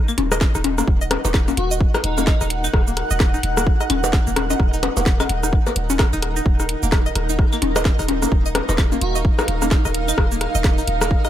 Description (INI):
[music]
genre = minimal techno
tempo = 129 BPM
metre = 4/4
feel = swing 60% on 16ths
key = Eb minor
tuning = A4 = 440 Hz
[part]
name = granular cloud pad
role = texture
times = 0.2-11.3 s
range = Eb4 to Gb5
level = -27 LUFS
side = right 2 dB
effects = built-in reverb, sidechain pumping
[part]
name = string-like resonator pluck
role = riff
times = 0.1-11.3 s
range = Bb3 to Eb5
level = -29 LUFS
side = right 1 dB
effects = chorus, phaser, sidechain pumping, digital delay
[part]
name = house drum kit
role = drums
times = 0.1-11.3 s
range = hi-hat, shaker, snare drum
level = -26 LUFS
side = right 2 dB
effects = none
[part]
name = electronic claves, percussion blips and rim click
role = percussion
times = 0.1-11.3 s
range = none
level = -23 LUFS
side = left 5 dB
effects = none
[part]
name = punchy sub bass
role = bass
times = 0.2-11.2 s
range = Eb1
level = -24 LUFS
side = equal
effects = sidechain pumping
[part]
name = electronic kick drum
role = drums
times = 0.4-11.2 s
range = none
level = -18 LUFS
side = equal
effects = none
[part]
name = airy dreamy lead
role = melody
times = 1.6-2.5, 9.0-9.2 s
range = Eb4 to Gb4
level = -29 LUFS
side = equal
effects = chorus, tape echo
[sound]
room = little or no reverb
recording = none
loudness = -16 LUFS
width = side -11 dB against mid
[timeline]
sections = 0.0-11.3 A section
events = none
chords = 0.0 Ebm